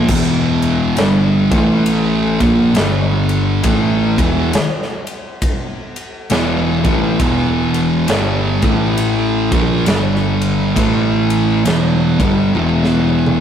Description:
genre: stoner and doom metal.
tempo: 67 BPM.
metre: 4/4.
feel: swing 61% on 8ths.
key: E phrygian.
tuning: A4 = 440 Hz.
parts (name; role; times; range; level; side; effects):
thick fuzz guitar; riff; 0.0-13.4 s; E2 to A#3; -18 LUFS; left 6 dB; distortion.
thick fuzz guitar; riff; 0.0-13.4 s; E2 to A#3; -16 LUFS; right 4 dB; distortion.
picked electric bass; bass; 0.0-13.4 s; E1 to A#1; -20 LUFS; left 1 dB; overdrive.
big rock drum kit; drums; 0.1-13.4 s; crash cymbal, kick drum, ride cymbal, snare drum, toms; -20 LUFS; equal; none.
room: moderate studio reverb, RT60 0.5 s.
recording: rough rehearsal-room recording, warm saturation.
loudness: -13 LUFS.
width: side -8 dB against mid.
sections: 0.1-13.4 A section.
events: drum fill 12.5-13.4.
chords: 0.1 Em; 1.4 A5; 2.3 A#5; 2.8 G5; 3.6 Em; 8.5 A5; 9.4 A#5; 9.9 G5; 10.8 A5; 11.7 Em.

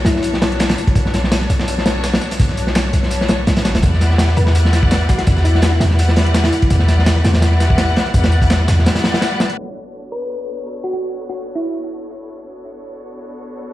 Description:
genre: drum and bass, jungle.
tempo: 167 BPM.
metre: 4/4.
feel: swing 54% on 16ths.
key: B minor.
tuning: A4 = 440 Hz.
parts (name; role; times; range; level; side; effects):
rich chamber string section; sustained chords; 0.0-13.7 s; B3 to F#5; -24 LUFS; left 2 dB; low-pass filter.
warm 808-style bass; bass; 0.0-8.9 s; F#1 to E2; -15 LUFS; equal; none.
crunchy breakbeat drum kit; drums; 0.0-9.5 s; hi-hat, kick drum, snare drum; -16 LUFS; equal; none.
thumb-piano-like synth pluck; melody; 0.1-0.4, 4.4-6.9, 10.1-11.9 s; E4 to B4; -24 LUFS; left 1 dB; wide subtle chorus, dub echo.
breakbeat sampler-style drum kit; drums; 0.1-9.6 s; hi-hat, snare drum, tambourine; -29 LUFS; equal; high-pass filter on perc, high-pass filter on snare, high-pass filter on hats.
room: light reverb, small room reverb.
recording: played on a big sound system in a bare room, stone room reverb, vinyl crackle, low-pass filter.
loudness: -13 LUFS.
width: side -15 dB against mid.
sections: 0.0-9.6 A section; 9.6-13.7 B section.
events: drop 0.0-9.6; break 8.9-9.6; filter sweep on string section 9.6-13.7; filter sweep 9.6-13.7.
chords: 0.0 Bm7; 3.8 Em7; 9.6 Bm7.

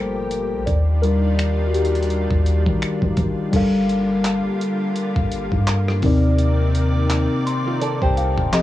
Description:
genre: contemporary R&B.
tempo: 84 BPM.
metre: 4/4.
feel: swing 58% on 16ths.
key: G minor.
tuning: A4 = 440 Hz.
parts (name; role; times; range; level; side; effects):
muted felt-like synth keys; accompaniment; 0.0-8.6 s; C3 to C6; -21 LUFS; left 2 dB; chorus, plate reverb.
lush unison pad; sustained chords; 0.0-8.6 s; Bb2 to D5; -26 LUFS; equal; chorus, plate reverb.
soft 808-style bass; bass; 0.0-8.6 s; G1 to Eb3; -20 LUFS; equal; none.
dusty soul sampler-style drum kit; drums; 0.3-8.6 s; crash cymbal, finger snaps, handclaps, hi-hat, kick drum, rim click; -24 LUFS; equal; overdrive, cassette tape.
nylon-string guitar; arpeggios; 7.7-8.5 s; F4 to D5; -26 LUFS; right 5 dB; tape echo, plate reverb.
room: light reverb.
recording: home recording on cassette, small room ambience.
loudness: -17 LUFS.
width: side -14 dB against mid.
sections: 0.0-3.5 A section; 3.5-8.6 B section.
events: synth keys solo 0.0-3.5; synth keys fill 7.1-8.6.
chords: 0.0 Gm9; 0.7 Ebmaj9; 3.5 Gm7; 6.0 Cm9.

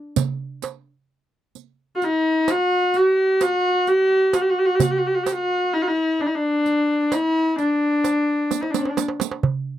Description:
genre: Arabic maqam ensemble.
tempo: 129 BPM (eighths).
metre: 10/8.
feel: straight.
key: D maqam huzam.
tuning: A4 = 440 Hz.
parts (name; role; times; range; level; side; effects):
darbuka; percussion; 0.2-9.7 s; none; -25 LUFS; right 5 dB; none.
riq; percussion; 0.2-9.4 s; none; -29 LUFS; right 17 dB; none.
rich viola; melody; 2.0-9.0 s; C4+47c to G4-37c; -18 LUFS; equal; none.
room: light reverb.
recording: dry, close 1970s-style studio recording.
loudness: -18 LUFS.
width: side -12 dB against mid.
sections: 0.0-9.4 A section.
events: drum fill 8.5-9.4.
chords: none.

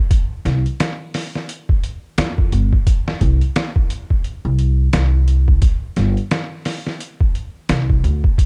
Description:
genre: trip hop.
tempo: 87 BPM.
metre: 4/4.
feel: swing 59% on 16ths.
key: unclear.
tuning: A4 = 436 Hz.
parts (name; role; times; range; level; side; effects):
trip hop sampler-style drum kit; drums; 0.1-8.5 s; hi-hat, kick drum, snare drum; -20 LUFS; equal; vintage 12-bit sampler grit, small room ambience.
upright bass; bass; 0.5-8.2 s; G1 to F2; -18 LUFS; equal; none.
room: digital ambience.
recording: none.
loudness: -18 LUFS.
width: mono.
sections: 0.0-8.5 A section.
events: none.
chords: none.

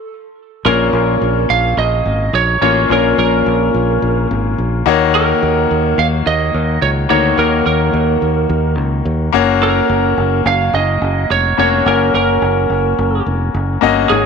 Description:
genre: piano-driven pop.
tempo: 107 BPM.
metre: 4/4.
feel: straight.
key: Bb minor.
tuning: A4 = 441 Hz.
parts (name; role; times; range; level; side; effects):
bright concert grand piano; accompaniment; 0.6-14.3 s; Ab2 to Eb5; -16 LUFS; left 9 dB; none.
lightly driven lead guitar; melody; 0.7-14.3 s; Ab4 to F5; -17 LUFS; right 9 dB; none.
fingered electric bass; bass; 0.7-14.3 s; F1 to Eb2; -17 LUFS; equal; none.
room: moderate echo chamber reverb, RT60 2.7 s.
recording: 1960s-style stereo with parts hard left and right.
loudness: -12 LUFS.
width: side -5 dB against mid.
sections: 0.7-14.3 A section.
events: stop 0.0-0.7.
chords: 0.0 N.C.; 0.7 Bbm; 4.9 Ebm7; 9.3 Gb.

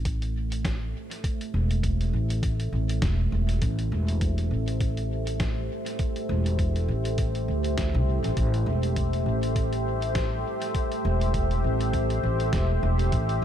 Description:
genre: ambient dub.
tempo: 101 BPM.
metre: 4/4.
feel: swing 57% on 16ths.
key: A minor.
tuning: A4 = 439 Hz.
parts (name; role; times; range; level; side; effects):
deep dark ambient pad; sustained chords; 0.0-13.4 s; A3 to E5; -30 LUFS; right 1 dB; chorus, built-in reverb.
upright bass; bass; 0.0-13.4 s; E1 to D2; -25 LUFS; equal; none.
electronic kick drum; drums; 0.1-13.3 s; none; -28 LUFS; equal; studio ambience.
lo-fi sampler-style drum kit; drums; 0.1-13.4 s; hi-hat, snare drum; -37 LUFS; equal; studio ambience, dub echo.
room: light reverb, digital ambience.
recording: none.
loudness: -24 LUFS.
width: side -10 dB against mid.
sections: 0.0-13.4 A section.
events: none.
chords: 0.0 Am7.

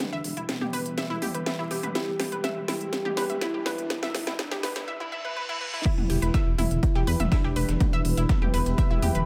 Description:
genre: melodic techno.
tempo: 123 BPM.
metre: 4/4.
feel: straight.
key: E minor.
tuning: A4 = 442 Hz.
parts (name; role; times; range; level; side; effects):
soft octave-layered synth lead; melody; 0.0-8.9 s; B3 to G4; -35 LUFS; equal; chorus, tremolo, sidechain pumping, dub echo.
deep dark ambient pad; sustained chords; 0.0-9.3 s; E4 to B4; -40 LUFS; equal; chorus, built-in reverb, sidechain pumping.
techno drum kit; drums; 0.0-9.2 s; crash cymbal, hi-hat, snare drum, toms; -34 LUFS; equal; high-pass filter on snare, high-pass filter on hats, high-pass filter on toms, high-pass filter on cymbals, high-pass filter on room, analog delay.
riser and reverse cymbal; sound effects; 1.7-5.9 s; none; -42 LUFS; equal; none.
analog pluck; arpeggios; 0.1-9.2 s; E4 to E6; -35 LUFS; equal; chorus, sidechain pumping, dub echo.
swelling detuned saw bass; bass; 0.1-9.2 s; E1 to E2; -32 LUFS; equal; sidechain pumping, high-pass filter.
dusty soul sampler-style drum kit; drums; 5.9-9.1 s; hi-hat, ride cymbal, snare drum; -45 LUFS; equal; high-pass filter on cymbals, high-pass filter on snare, high-pass filter on hats.
electronic kick drum; drums; 5.9-8.9 s; none; -26 LUFS; equal; none.
room: moderate spring reverb, RT60 1.7 s, digital ambience.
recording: echo-heavy mix, high-pass filter.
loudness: -27 LUFS.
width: mono.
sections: 0.0-5.9 A section; 5.9-9.3 B section.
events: build-up 0.0-5.9; drum fill 0.0-4.9; filter sweep on ambient pad 0.0-5.9; filter sweep 0.0-5.9; reverse cymbal 4.9-5.9; drop 5.9-9.3.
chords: 0.0 Em.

